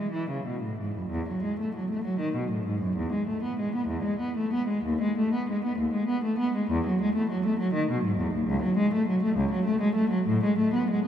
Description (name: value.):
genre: classical, baroque-style suite movement for unaccompanied cello.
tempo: 61-69 BPM (dotted quarters).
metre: 12/8.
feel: rubato.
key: E major.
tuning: A4 = 440 Hz.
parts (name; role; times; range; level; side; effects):
dark cello; solo; 0.0-11.1 s; C#2 to B3; -25 LUFS; equal; none.
room: wet cathedral reverb, RT60 5.7 s.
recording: in a vast, echoing space.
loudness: -25 LUFS.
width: side -9 dB against mid.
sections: 0.0-11.1 A section.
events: none.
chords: none.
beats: 0.15 | 1.13 2.06 2.97 3.90 | 4.85 5.78 6.68 7.58 | 8.48 9.36 10.26.